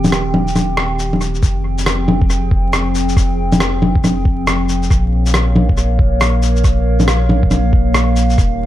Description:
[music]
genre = future garage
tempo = 138 BPM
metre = 4/4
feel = swing 63% on 16ths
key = F minor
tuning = A4 = 443 Hz
[part]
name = warbly tape-like pad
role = sustained chords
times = 0.0-8.7 s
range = Eb3 to G5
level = -20 LUFS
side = equal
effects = chorus, built-in reverb, vintage 12-bit sampler grit, sidechain pumping
[part]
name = soft dub sub bass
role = bass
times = 0.0-8.7 s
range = Eb1 to Bb1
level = -17 LUFS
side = equal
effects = sidechain pumping
[part]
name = electronic bongos, shaker and rim click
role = drums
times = 0.0-8.5 s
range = none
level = -17 LUFS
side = equal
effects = analog delay
[part]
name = electronic kick drum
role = drums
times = 1.4-8.5 s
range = none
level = -14 LUFS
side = equal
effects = none
[sound]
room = little or no reverb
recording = echo-heavy mix, vinyl crackle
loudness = -12 LUFS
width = side -13 dB against mid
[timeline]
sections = 0.0-1.4 A section; 1.4-8.7 B section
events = break 0.0-1.4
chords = 0.0 Cm/Eb; 1.4 Fmadd9; 4.9 Bbm

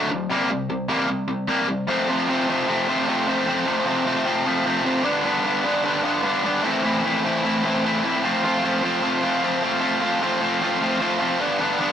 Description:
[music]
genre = punk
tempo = 151 BPM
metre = 4/4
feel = straight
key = unclear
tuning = A4 = 440 Hz
[part]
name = cranked stack guitar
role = solo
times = 0.0-11.9 s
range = F2 to F4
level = -19 LUFS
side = equal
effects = overdrive
[sound]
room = moderate studio reverb, RT60 0.6 s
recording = rough rehearsal-room recording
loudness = -19 LUFS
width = side -9 dB against mid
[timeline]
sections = 0.0-1.9 A section; 1.9-11.9 B section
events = none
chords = 0.3 C5; 1.9 F; 5.1 G; 6.6 Am; 8.2 F; 11.4 G

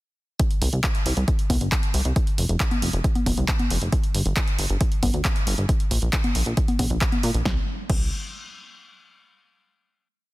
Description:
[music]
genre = uplifting trance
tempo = 136 BPM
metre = 4/4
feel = straight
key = unclear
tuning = A4 = 441 Hz
[part]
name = electronic kick drum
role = drums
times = 0.4-8.0 s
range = none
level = -23 LUFS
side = equal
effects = overdrive, studio reverb
[part]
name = punchy analog drum machine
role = drums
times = 0.4-8.0 s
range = congas, crash cymbal, handclaps, hi-hat, snare drum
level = -27 LUFS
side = left 1 dB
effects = overdrive, studio reverb
[part]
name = plucky analog bass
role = bass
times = 0.6-8.1 s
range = F1 to Bb2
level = -23 LUFS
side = equal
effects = sidechain pumping
[sound]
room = digital ambience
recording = dense, heavily limited modern master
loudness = -20 LUFS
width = side -19 dB against mid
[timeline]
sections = 0.4-7.5 drop; 7.5-9.2 final chord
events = drop 0.4-7.5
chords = none

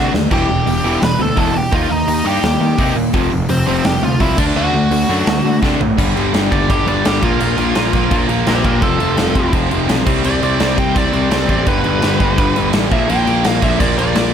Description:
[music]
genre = punk rock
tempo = 169 BPM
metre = 4/4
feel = straight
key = unclear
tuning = A4 = 440 Hz
[part]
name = biting lead guitar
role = melody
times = 0.0-14.3 s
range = C4 to B5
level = -20 LUFS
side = right 1 dB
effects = overdrive
[part]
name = distorted electric guitar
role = riff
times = 0.0-14.3 s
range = E2 to Eb4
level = -20 LUFS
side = right 12 dB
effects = overdrive
[part]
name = overdriven electric guitar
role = riff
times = 0.0-14.3 s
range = E2 to Eb4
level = -19 LUFS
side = left 13 dB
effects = none
[part]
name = fuzz picked electric bass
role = bass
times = 0.0-14.3 s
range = E1 to Eb3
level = -20 LUFS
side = right 1 dB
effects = overdrive
[part]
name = big rock drum kit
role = drums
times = 0.1-14.2 s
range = crash cymbal, hi-hat, kick drum, snare drum, toms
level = -18 LUFS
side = equal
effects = none
[sound]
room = little or no reverb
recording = none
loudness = -13 LUFS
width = side -8 dB against mid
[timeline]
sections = 0.0-6.0 A section; 6.0-14.3 B section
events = drum fill 0.0-0.3, 5.6-6.0; half time 0.0-6.0; lead electric guitar solo 6.0-14.3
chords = 0.3 Em; 1.7 Eb; 3.1 F5; 4.4 D; 6.0 G5; 7.2 Bb5; 8.8 F; 10.1 C5; 11.7 G; 12.9 Bb

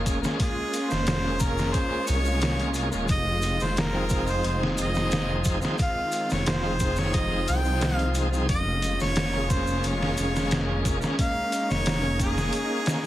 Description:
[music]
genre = trip hop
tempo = 89 BPM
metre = 4/4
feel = straight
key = unclear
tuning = A4 = 440 Hz
[part]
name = warm harmonica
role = melody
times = 0.0-13.1 s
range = Ab4 to G5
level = -30 LUFS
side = equal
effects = dub echo
[part]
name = bright tonewheel organ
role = accompaniment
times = 0.0-13.1 s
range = F3 to Ab4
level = -31 LUFS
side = equal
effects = overdrive, fast rotary speaker, tremolo, tape echo
[part]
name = rich studio string section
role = sustained chords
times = 0.0-13.1 s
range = Eb3 to F4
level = -32 LUFS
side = equal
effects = none
[part]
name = dark detuned saw bass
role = bass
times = 0.0-12.5 s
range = Eb1 to C2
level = -28 LUFS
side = equal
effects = tube saturation
[part]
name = trip hop sampler-style drum kit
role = drums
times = 0.1-13.0 s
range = hi-hat, kick drum, snare drum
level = -28 LUFS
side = equal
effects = none
[part]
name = maracas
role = percussion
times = 0.1-13.1 s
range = none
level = -39 LUFS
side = left 1 dB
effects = none
[sound]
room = small room ambience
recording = heavily compressed radio sound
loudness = -23 LUFS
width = side -14 dB against mid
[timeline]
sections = 0.0-13.1 A section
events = kick drops out 12.5-13.1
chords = 0.0 Bbm7/F; 3.1 Fm7; 8.5 Bbm7/F

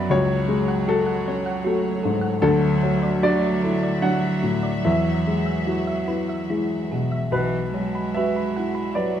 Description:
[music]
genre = neoclassical piano and strings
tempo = 70-78 BPM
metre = 3/4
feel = rubato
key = E mixolydian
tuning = A4 = 441 Hz
[part]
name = clear cello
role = second line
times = 0.0-9.2 s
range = E3 to G#3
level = -26 LUFS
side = right 4 dB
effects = none
[part]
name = warm baby grand piano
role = accompaniment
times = 0.0-9.2 s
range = B1 to F#5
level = -22 LUFS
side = left 2 dB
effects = none
[part]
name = warm chamber string section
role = sustained chords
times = 0.0-9.2 s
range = F#3 to E5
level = -33 LUFS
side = equal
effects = none
[part]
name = thumb-piano-like synth pluck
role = arpeggios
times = 0.0-9.1 s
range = D4 to B5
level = -29 LUFS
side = right 2 dB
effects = chorus, slapback echo
[sound]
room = moderate concert hall reverb, RT60 2.4 s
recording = none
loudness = -20 LUFS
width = side -10 dB against mid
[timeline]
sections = 0.0-9.2 A section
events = none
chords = 0.1 F#madd9/C#; 2.4 Dadd9; 4.8 Eadd9; 7.3 Bsus4

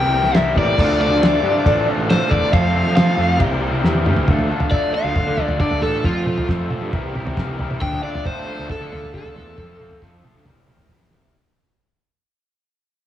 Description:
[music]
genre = indie rock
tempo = 136 BPM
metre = 4/4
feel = straight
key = D minor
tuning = A4 = 440 Hz
[part]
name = crunchy overdriven guitar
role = melody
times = 0.0-10.0 s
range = F4 to G5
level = -22 LUFS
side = left 1 dB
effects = tape echo
[part]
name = bright tonewheel organ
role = sustained chords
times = 0.0-4.3 s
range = C3 to G4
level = -27 LUFS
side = right 1 dB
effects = slow rotary speaker, overdrive, chorus vibrato, cassette tape
[part]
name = raw garage guitar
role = riff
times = 0.0-11.3 s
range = C3 to Bb4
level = -23 LUFS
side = left 1 dB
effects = overdrive, cassette tape
[part]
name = fuzz picked electric bass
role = bass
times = 0.0-11.3 s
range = A1 to F3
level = -22 LUFS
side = equal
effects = overdrive
[part]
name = cloth-damped thuddy drum kit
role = drums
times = 0.2-11.3 s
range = crash cymbal, kick drum, ride cymbal, snare drum, toms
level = -21 LUFS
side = equal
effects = cassette tape
[sound]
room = light reverb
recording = home recording on cassette, small room ambience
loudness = -16 LUFS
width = side -11 dB against mid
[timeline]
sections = 0.0-4.3 A section; 4.3-11.3 B section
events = overdriven electric guitar solo 0.0-4.3, 4.3-11.3; drum fill 3.8-4.3, 10.9-11.3; fade-out 4.3-11.3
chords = 0.0 C7; 0.8 Dm7; 2.5 F; 3.4 C7; 4.3 Dm; 6.0 F; 6.9 C7; 7.8 Dm7; 9.6 F; 10.4 C7

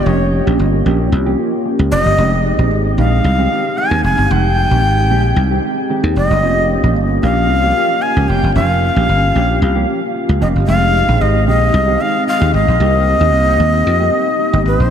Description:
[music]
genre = funk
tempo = 113 BPM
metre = 4/4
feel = straight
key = F minor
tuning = A4 = 440 Hz
[part]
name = breathy bright shakuhachi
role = melody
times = 0.0-14.9 s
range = C5 to Ab5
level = -16 LUFS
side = left 1 dB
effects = diffuse ambient delay
[part]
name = mellow synth brass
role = accompaniment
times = 0.0-14.9 s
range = Ab3 to G4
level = -19 LUFS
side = left 2 dB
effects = chorus
[part]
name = dry thumbed slap bass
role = bass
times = 0.0-14.9 s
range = F1 to F2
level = -14 LUFS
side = equal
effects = none
[part]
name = mellow electric guitar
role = riff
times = 0.1-14.8 s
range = Eb3 to G4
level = -23 LUFS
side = right 5 dB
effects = wide subtle chorus
[sound]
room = wet cathedral reverb, RT60 6.2 s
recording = dreamy mix soaked in reverb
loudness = -12 LUFS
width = side -8 dB against mid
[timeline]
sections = 0.0-14.9 A section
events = none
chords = 0.0 Gm7b5/F; 2.2 Fm9; 6.4 Gm7b5/F; 10.7 Fm9; 12.8 Cm7

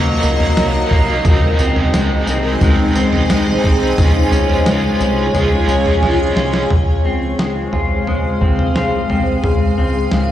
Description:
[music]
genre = dream pop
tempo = 88 BPM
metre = 4/4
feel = straight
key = Db major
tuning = A4 = 437 Hz
[part]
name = overdriven electric guitar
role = accompaniment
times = 0.0-6.7 s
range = Gb3 to F4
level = -22 LUFS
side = right 3 dB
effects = harmonic tremolo, lush chorus
[part]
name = granular cloud pad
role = sustained chords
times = 0.0-10.3 s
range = Ab3 to Bb5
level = -19 LUFS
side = left 1 dB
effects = built-in reverb, phaser
[part]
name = electric guitar at the edge of break-up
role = arpeggios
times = 0.0-10.3 s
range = Gb3 to F4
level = -20 LUFS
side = left 1 dB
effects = lush chorus, tape echo
[part]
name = chorused synth bass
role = bass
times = 0.0-10.3 s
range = C2 to Db2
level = -19 LUFS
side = equal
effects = none
[part]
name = dusty soul sampler-style drum kit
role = drums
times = 0.2-10.3 s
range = kick drum, snare drum, tambourine, toms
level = -18 LUFS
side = equal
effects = none
[sound]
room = moderate huge ambient reverb, RT60 4.2 s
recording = played on a big sound system in a bare room, large studio reverb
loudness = -13 LUFS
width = side -12 dB against mid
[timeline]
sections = 0.0-6.7 A section; 6.7-10.3 B section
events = drum fill 6.0-6.7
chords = 0.0 Ebm; 1.3 Ab; 4.0 Db; 6.7 Dbmaj7

